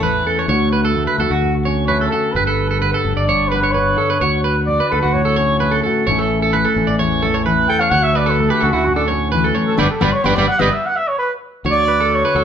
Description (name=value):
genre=highlife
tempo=129 BPM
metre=4/4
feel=straight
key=D major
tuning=A4 = 440 Hz
part: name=mellow trumpet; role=melody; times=0.0-12.4 s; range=D4 to G5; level=-19 LUFS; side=equal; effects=none
part: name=fingerpicked steel-string acoustic guitar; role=accompaniment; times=0.0-12.4 s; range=E2 to G4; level=-20 LUFS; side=left 4 dB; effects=none
part: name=electric guitar at the edge of break-up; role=arpeggios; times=0.0-12.4 s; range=F#4 to D5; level=-18 LUFS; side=right 3 dB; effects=spring reverb
part: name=fingered electric bass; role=bass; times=0.0-12.4 s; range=G1 to D2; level=-21 LUFS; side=right 1 dB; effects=none
room=light reverb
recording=band playing live in one room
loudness=-14 LUFS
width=side -8 dB against mid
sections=0.0-11.7 A section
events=trumpet solo 0.0-11.7; band accent 9.8-11.7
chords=0.5 Dmaj7; 2.3 G; 4.2 Dmaj7; 6.1 A; 7.9 Dmaj7; 9.8 G; 10.7 N.C.; 11.7 Dmaj7